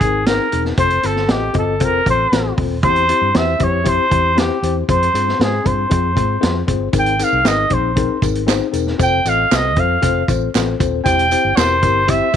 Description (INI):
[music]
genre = uptempo 1960s-style soul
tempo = 117 BPM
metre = 4/4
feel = straight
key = unclear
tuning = A4 = 440 Hz
[part]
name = breathy trumpet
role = melody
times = 0.0-12.4 s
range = G4 to G5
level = -17 LUFS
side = right 1 dB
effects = none
[part]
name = tine electric piano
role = accompaniment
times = 0.0-12.4 s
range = C4 to Eb5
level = -20 LUFS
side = left 13 dB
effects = overdrive, fast stereo tremolo
[part]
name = vintage muted fingered electric bass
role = bass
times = 0.0-12.4 s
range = Eb1 to Ab2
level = -22 LUFS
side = right 2 dB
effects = none
[part]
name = vintage drum kit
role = drums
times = 0.0-12.4 s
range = hi-hat, kick drum, snare drum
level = -19 LUFS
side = right 2 dB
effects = none
[part]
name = tambourine and handclaps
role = percussion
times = 6.9-12.4 s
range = none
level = -28 LUFS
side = right 17 dB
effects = none
[sound]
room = light reverb, studio reverb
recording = 1960s-style stereo with parts hard left and right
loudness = -14 LUFS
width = side -9 dB against mid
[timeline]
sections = 0.0-12.4 A section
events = none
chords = 0.0 Abadd9; 0.8 F; 2.8 C/E; 4.9 Fm; 6.9 Abadd9; 9.0 F; 11.1 C/E